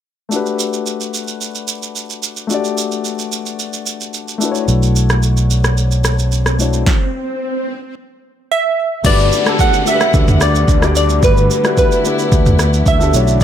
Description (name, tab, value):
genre	amapiano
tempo	110 BPM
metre	4/4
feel	straight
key	unclear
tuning	A4 = 440 Hz
part	dark grand piano	accompaniment	0.3-13.4 s	A3 to D5	-20 LUFS	left 6 dB	none
part	deep house drum kit	drums	0.3-13.4 s	crash cymbal, kick drum, rim click, shaker, snare drum, toms	-17 LUFS	right 1 dB	none
part	fingered electric bass	bass	4.7-13.4 s	G1 to D2	-14 LUFS	equal	none
part	swell and downlifter	sound effects	5.9-13.4 s	none	-25 LUFS	equal	none
part	glassy wavetable pluck	melody	8.5-13.4 s	B4 to F#5	-16 LUFS	right 1 dB	chorus, ping-pong delay
part	warm studio string section	sustained chords	9.0-13.4 s	D3 to F#5	-23 LUFS	equal	sidechain pumping
room	digital ambience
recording	none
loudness	-13 LUFS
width	side -10 dB against mid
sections	0.3-9.0 A section; 9.0-13.4 B section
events	swell 5.9-9.0; stop 6.9-9.0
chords	0.3 Gmaj7; 4.4 Bm11; 9.0 Gmaj7